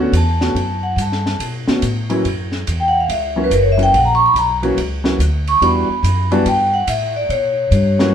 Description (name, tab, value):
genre	jazz, small-group swing and bop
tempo	142 BPM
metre	4/4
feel	swing 65% on 8ths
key	B minor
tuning	A4 = 440 Hz
part	warm concert grand piano	accompaniment	0.0-8.1 s	D3 to F#4	-19 LUFS	equal	none
part	upright bass	bass	0.0-8.1 s	F#1 to B2	-18 LUFS	equal	none
part	compact cocktail drum kit	drums	0.1-8.1 s	hi-hat, ride cymbal, snare drum	-26 LUFS	right 1 dB	none
part	vibraphone with medium hard mallets	melody	0.2-8.1 s	A#4 to C#6	-16 LUFS	equal	none
room	light reverb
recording	band playing live in one room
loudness	-14 LUFS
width	side -8 dB against mid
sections	0.0-8.1 A section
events	vibraphone solo 0.0-8.1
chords	0.0 Bm7; 2.2 F#7; 5.6 Em7; 7.3 B5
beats	0.13 | 0.56 0.98 1.40 1.82 | 2.24 2.67 3.09 3.51 | 3.93 4.35 4.77 5.20 | 5.62 6.04 6.46 6.88 | 7.30 7.72